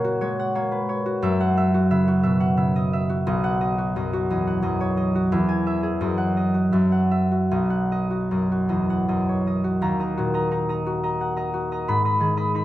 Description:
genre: classical, solo harp piece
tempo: 74-90 BPM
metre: 3/4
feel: rubato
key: B major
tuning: A4 = 444 Hz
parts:
  - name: concert harp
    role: solo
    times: 0.0-12.6 s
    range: B1 to B5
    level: -20 LUFS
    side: equal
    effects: none
room: moderate recital hall reverb, RT60 1.5 s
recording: close, detailed microphones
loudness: -20 LUFS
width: side -14 dB against mid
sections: 0.0-9.8 A section; 9.8-12.6 B section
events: none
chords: 0.0 F#/A#; 1.2 F#7; 3.3 B; 5.3 E; 6.0 D#m/F#; 6.7 Esus2/F#; 7.5 B; 9.8 D#m; 11.9 G#m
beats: 0.55 | 1.22 1.90 2.57 | 3.26 3.94 4.62 | 5.32 6.01 6.72 | 7.50 8.31 9.08 | 9.84 10.53 11.21 | 11.88 12.55

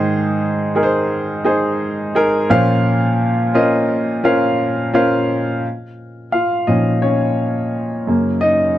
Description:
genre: pop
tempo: 86 BPM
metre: 4/4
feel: straight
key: Bb minor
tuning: A4 = 440 Hz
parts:
  - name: warm baby grand piano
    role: solo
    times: 0.0-8.8 s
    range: Gb2 to F5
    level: -15 LUFS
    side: equal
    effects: none
room: moderate booth ambience, RT60 0.2 s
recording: dry, close 1970s-style studio recording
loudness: -15 LUFS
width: side -13 dB against mid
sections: 0.0-5.6 A section; 5.6-8.8 A section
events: grand piano solo 5.6-8.8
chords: 0.0 Ab; 2.5 Bbmadd9; 5.6 Bbm; 8.1 Gb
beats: | 0.06 0.76 1.45 2.15 | 2.85 3.55 4.24 4.94 | 5.64 6.33 7.03 7.72 | 8.42

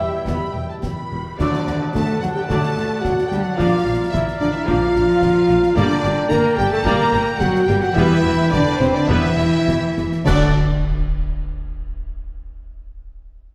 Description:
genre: cinematic, heroic adventure film score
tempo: 108 BPM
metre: 4/4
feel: uneven beats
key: unclear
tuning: A4 = 441 Hz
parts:
  - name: warm symphonic violin section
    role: melody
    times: 0.0-10.6 s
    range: C5 to Bb5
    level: -31 LUFS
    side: equal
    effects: none
  - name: clear clarinet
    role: second line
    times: 0.0-10.5 s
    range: E4 to D5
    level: -35 LUFS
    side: equal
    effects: none
  - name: mellow hollow silver concert flute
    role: second line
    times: 0.0-10.6 s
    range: E5 to B5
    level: -34 LUFS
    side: equal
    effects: none
  - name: warm oboe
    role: second line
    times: 0.0-10.5 s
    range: E5 to G5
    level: -33 LUFS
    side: equal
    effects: none
  - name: warm symphonic violin section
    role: second line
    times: 0.0-10.6 s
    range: C5 to B5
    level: -33 LUFS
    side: equal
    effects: none
  - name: rich symphonic viola section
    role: accompaniment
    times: 0.0-10.6 s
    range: E3 to G4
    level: -30 LUFS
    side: equal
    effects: none
  - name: dark French horn section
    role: sustained chords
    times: 0.0-10.5 s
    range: B3 to Bb4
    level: -23 LUFS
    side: equal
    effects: none
  - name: warm trombone section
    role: sustained chords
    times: 0.0-10.5 s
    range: B2 to B3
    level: -34 LUFS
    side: equal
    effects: none
  - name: mellow trumpet section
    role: stabs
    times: 0.0-10.5 s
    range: E4 to D5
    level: -33 LUFS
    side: equal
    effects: none
  - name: warm studio double bass section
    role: bass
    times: 0.0-10.6 s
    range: E1 to D2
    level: -27 LUFS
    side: equal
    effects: none
  - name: warm symphonic cello section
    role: bass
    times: 0.0-10.6 s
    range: E2 to D4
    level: -26 LUFS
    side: equal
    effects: none
  - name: concert snare drum, concert bass drum and clash cymbals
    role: drums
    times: 0.3-10.6 s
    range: none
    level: -30 LUFS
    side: equal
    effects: none
  - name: tam-tam, clash cymbals and concert bass drum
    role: percussion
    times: 1.4-3.5, 10.3-11.4 s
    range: none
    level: -30 LUFS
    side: equal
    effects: none
  - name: timpani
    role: percussion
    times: 10.3-10.5 s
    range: D3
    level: -27 LUFS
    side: equal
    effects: none
room: moderate scoring stage reverb, RT60 1.9 s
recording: none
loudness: -18 LUFS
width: mono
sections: 0.0-1.4 A section; 1.4-10.3 B section; 10.3-12.6 C section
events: band accent 1.4-1.9, 10.3-10.9; slowing down 4.7-10.3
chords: 0.0 Em; 1.4 D; 3.6 Bb; 5.8 Gm; 8.0 Em; 10.3 D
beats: 0.27 0.83 | 1.40 1.95 2.50 3.04 | 3.59 4.13 4.67 5.22 | 5.77 6.31 6.86 7.41 | 7.97 8.53 9.10 9.68 | 10.27 10.86

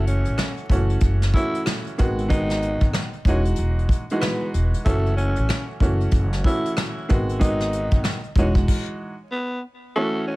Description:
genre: hip hop, boom-bap hip-hop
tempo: 94 BPM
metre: 4/4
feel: swing 60% on 16ths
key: F# dorian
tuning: A4 = 440 Hz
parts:
  - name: growling tenor saxophone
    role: melody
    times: 0.0-10.4 s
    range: A3 to E4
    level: -28 LUFS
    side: equal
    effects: high-pass filter, low-pass filter, tape echo
  - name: warm upright piano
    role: accompaniment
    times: 0.0-10.4 s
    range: D#3 to F#4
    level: -26 LUFS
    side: right 1 dB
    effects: cassette tape, high-pass filter, low-pass filter
  - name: upright bass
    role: bass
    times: 0.0-8.7 s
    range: E1 to A1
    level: -22 LUFS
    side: equal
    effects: none
  - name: soft brush drum kit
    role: drums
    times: 0.1-8.9 s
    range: crash cymbal, hi-hat, kick drum, rim click, snare drum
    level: -22 LUFS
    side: equal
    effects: none
room: light reverb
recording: vinyl crackle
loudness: -19 LUFS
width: side -20 dB against mid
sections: 0.0-10.0 A section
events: stop 8.7-10.0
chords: 0.0 F#m7; 2.0 G#m7; 3.3 Emaj9; 4.9 F#m7; 7.1 G#m7; 8.4 Emaj9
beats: 0.39 1.02 1.66 | 2.30 2.94 3.58 4.22 | 4.85 5.49 6.13 6.77 | 7.41 8.05 8.68 9.32 | 9.96

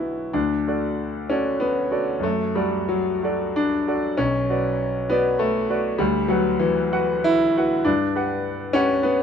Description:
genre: classical, romantic character piece for solo piano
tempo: 74-103 BPM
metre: 3/4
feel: rubato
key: D major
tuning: A4 = 440 Hz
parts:
  - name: clear grand piano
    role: solo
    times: 0.0-9.2 s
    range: B1 to F#5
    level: -20 LUFS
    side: left 1 dB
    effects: none
room: light reverb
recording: none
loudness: -20 LUFS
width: side -7 dB against mid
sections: 0.3-9.2 A section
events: none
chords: 0.3 D; 2.2 D/F#; 4.2 Bm; 6.0 Bm/D; 7.9 Gmaj7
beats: | 0.35 0.99 1.61 | 2.24 2.89 3.56 | 4.18 4.80 5.40 | 6.00 6.60 7.26 | 7.88 8.47 9.06

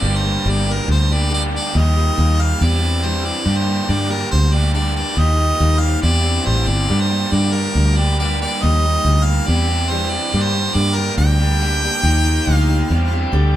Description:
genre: rock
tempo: 140 BPM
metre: 4/4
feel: straight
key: G minor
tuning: A4 = 443 Hz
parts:
  - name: bright harmonica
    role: melody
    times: 0.0-13.3 s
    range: Bb4 to G5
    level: -21 LUFS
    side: equal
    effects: none
  - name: picked steel-string acoustic guitar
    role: accompaniment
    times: 0.0-13.6 s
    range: G2 to A4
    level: -27 LUFS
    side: left 3 dB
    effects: none
  - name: bright tonewheel organ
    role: sustained chords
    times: 0.0-13.6 s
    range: D4 to Eb5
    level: -34 LUFS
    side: left 1 dB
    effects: none
  - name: raw garage guitar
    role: riff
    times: 0.0-13.6 s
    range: G2 to G4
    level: -24 LUFS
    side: right 2 dB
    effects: overdrive
  - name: fingered electric bass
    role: bass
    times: 0.0-13.6 s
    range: G1 to G2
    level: -16 LUFS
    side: equal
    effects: none
room: moderate studio reverb, RT60 0.8 s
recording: band playing live in one room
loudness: -15 LUFS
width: side -13 dB against mid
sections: 0.0-13.6 A section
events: none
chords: 0.0 Gm; 1.7 Ebadd9; 2.6 Cadd9/E; 3.5 Gm; 5.2 Ebadd9; 6.0 Cadd9/E; 6.9 Gm; 8.6 Ebadd9; 9.5 Cadd9/E; 10.3 Gm; 12.0 Ebadd9; 12.9 Cadd9/E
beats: | 0.03 0.46 0.89 1.32 | 1.75 2.17 2.60 3.03 | 3.46 3.89 4.32 4.75 | 5.18 5.61 6.04 6.46 | 6.89 7.32 7.75 8.18 | 8.61 9.04 9.47 9.90 | 10.32 10.75 11.18 11.61 | 12.04 12.47 12.90 13.33

